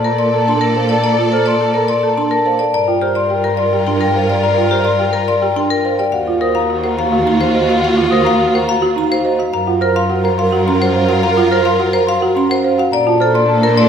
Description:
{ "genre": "classical, minimalist pattern music", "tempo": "106 BPM", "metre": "3/4", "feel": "straight", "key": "Bb major", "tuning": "A4 = 441 Hz", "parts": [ { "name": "marimba with hard mallets", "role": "melody", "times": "0.0-13.9 s", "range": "G4 to Bb5", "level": "-18 LUFS", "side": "left 5 dB", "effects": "none" }, { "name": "mellow hollow alto flute", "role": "second line", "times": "0.0-13.9 s", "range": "Gb4 to Bb4", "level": "-24 LUFS", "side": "right 3 dB", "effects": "none" }, { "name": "warm studio violin section", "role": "sustained chords", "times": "0.0-13.9 s", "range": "D4 to D5", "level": "-23 LUFS", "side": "left 2 dB", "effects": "none" }, { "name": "folk marimba with medium mallets", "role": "arpeggios", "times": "0.0-13.8 s", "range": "Db4 to C5", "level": "-18 LUFS", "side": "right 4 dB", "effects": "none" }, { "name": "large celesta", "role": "arpeggios", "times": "0.0-13.9 s", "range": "Eb5 to F6", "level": "-19 LUFS", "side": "left 2 dB", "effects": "none" }, { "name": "dark cello", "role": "bass", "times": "0.0-13.9 s", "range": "Eb2 to Bb2", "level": "-20 LUFS", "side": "right 2 dB", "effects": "none" } ], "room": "wet recital hall reverb, RT60 1.6 s", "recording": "recorded in a church or concert hall", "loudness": "-12 LUFS", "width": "side -8 dB against mid", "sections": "0.0-13.9 A section", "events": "none", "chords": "0.0 Bbmaj7; 2.7 Gm7; 6.1 Ebmadd9; 9.5 Gbmaj7; 12.9 Bbmaj7" }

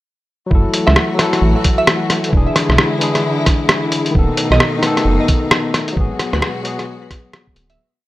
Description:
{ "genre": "future garage", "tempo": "132 BPM", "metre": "4/4", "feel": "swing 62% on 16ths", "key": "F# minor", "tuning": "A4 = 439 Hz", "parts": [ { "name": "tine electric piano", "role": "accompaniment", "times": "0.5-7.8 s", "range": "D#3 to A4", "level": "-20 LUFS", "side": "left 2 dB", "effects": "vintage 12-bit sampler grit, sidechain pumping, analog delay" }, { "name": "rich studio string section", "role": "sustained chords", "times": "0.5-7.8 s", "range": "B2 to F#4", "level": "-21 LUFS", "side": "left 1 dB", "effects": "sidechain pumping" }, { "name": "dark detuned saw bass", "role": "bass", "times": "0.5-7.8 s", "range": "D1 to D2", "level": "-16 LUFS", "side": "equal", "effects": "tube saturation, sidechain pumping" }, { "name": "electronic kick drum", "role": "drums", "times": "0.5-7.5 s", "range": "none", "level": "-15 LUFS", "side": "equal", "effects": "studio reverb" }, { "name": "lo-fi sampler-style drum kit", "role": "drums", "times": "0.7-7.8 s", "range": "hi-hat, rim click", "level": "-16 LUFS", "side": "equal", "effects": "studio reverb" }, { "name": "glassy wavetable pluck", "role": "melody", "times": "0.9-7.8 s", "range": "B4 to E5", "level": "-22 LUFS", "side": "right 3 dB", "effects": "chorus, vintage 12-bit sampler grit, tape echo" } ], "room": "little or no reverb", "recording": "dry, gritty hardware recording", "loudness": "-13 LUFS", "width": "side -17 dB against mid", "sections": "0.5-7.8 groove", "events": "fade-out 5.4-7.8", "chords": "0.5 F#m7; 2.3 E7; 4.1 B7/D#; 6.0 G#m7b5" }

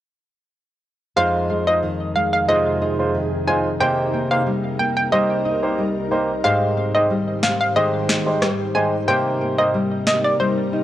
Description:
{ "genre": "dancehall", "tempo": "91 BPM", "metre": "4/4", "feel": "straight", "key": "unclear", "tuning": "A4 = 442 Hz", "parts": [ { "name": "hollow square pluck", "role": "melody", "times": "1.2-10.8 s", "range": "C5 to Ab5", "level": "-21 LUFS", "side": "equal", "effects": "chorus, analog delay" }, { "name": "warm grand piano", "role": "accompaniment", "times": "1.2-9.8 s", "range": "Ab3 to C5", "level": "-22 LUFS", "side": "right 2 dB", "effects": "none" }, { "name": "ethereal airy pad", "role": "sustained chords", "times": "2.0-10.8 s", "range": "C2 to C5", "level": "-28 LUFS", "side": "equal", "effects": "ensemble chorus, built-in reverb, tremolo" }, { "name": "nylon-string guitar", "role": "arpeggios", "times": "1.2-10.8 s", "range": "F2 to Eb4", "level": "-24 LUFS", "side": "left 2 dB", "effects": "none" }, { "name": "electronic snare drum and rim click", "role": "drums", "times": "7.4-10.2 s", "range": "none", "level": "-22 LUFS", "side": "equal", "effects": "none" } ], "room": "light reverb, small room ambience", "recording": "dry, gritty hardware recording, cassette tape", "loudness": "-17 LUFS", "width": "side -13 dB against mid", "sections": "1.2-10.8 A section", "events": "drums muted 10.4-10.8", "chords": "1.2 Fm7; 3.8 Cm7; 6.4 Abmaj7; 9.1 Cm7" }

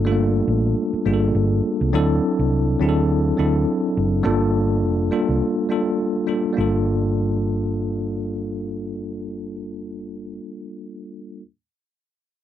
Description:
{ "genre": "lush 1970s-style soul", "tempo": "103 BPM", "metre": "4/4", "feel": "swing 58% on 16ths", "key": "G dorian", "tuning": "A4 = 443 Hz", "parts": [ { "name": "bell-like tine electric piano", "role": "accompaniment", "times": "0.0-11.4 s", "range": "F#3 to A4", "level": "-21 LUFS", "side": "left 1 dB", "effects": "fast stereo tremolo" }, { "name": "hollow-body short-scale fingered electric bass", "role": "bass", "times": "0.0-10.4 s", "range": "F1 to D2", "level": "-22 LUFS", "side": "right 1 dB", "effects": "none" } ], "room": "light reverb", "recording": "dry, close 1970s-style studio recording", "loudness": "-18 LUFS", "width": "side -11 dB against mid", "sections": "0.0-1.9 A section; 1.9-6.6 B section; 6.6-8.9 C section", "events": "none", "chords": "0.0 Gm7; 1.9 D7; 4.3 Gm7" }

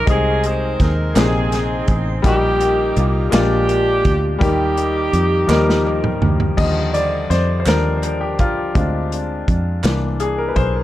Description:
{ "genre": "slow gospel", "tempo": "55 BPM (dotted quarters)", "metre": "6/8", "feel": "straight", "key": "Eb major", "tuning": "A4 = 440 Hz", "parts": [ { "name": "warm saxophone section", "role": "melody", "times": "0.0-6.2 s", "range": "Bb3 to C5", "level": "-20 LUFS", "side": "right 1 dB", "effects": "dub echo" }, { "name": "clear concert grand piano", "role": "accompaniment", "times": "0.0-10.8 s", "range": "Bb2 to Eb5", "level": "-20 LUFS", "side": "left 2 dB", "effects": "dub echo" }, { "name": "fingered electric bass", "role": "bass", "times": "0.0-10.8 s", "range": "A1 to F2", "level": "-20 LUFS", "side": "equal", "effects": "none" }, { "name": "warm soul drum kit", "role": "drums", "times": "0.1-10.7 s", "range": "crash cymbal, hi-hat, kick drum, snare drum, toms", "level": "-20 LUFS", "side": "equal", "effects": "none" }, { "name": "group handclap", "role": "percussion", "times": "1.2-10.2 s", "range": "none", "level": "-33 LUFS", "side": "right 5 dB", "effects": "none" } ], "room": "moderate spring reverb, RT60 2.5 s", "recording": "echo-heavy mix", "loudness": "-15 LUFS", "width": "side -14 dB against mid", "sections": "0.0-6.6 A section; 6.6-10.8 B section", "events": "drum fill 5.5-6.6; grand piano solo 6.6-10.8", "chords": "0.1 Ab/C; 1.2 Bb9sus4; 2.2 Eb/Bb; 3.3 Bb7; 4.4 Eb; 6.6 Ebmaj7; 8.8 Dm7b5; 9.8 C7" }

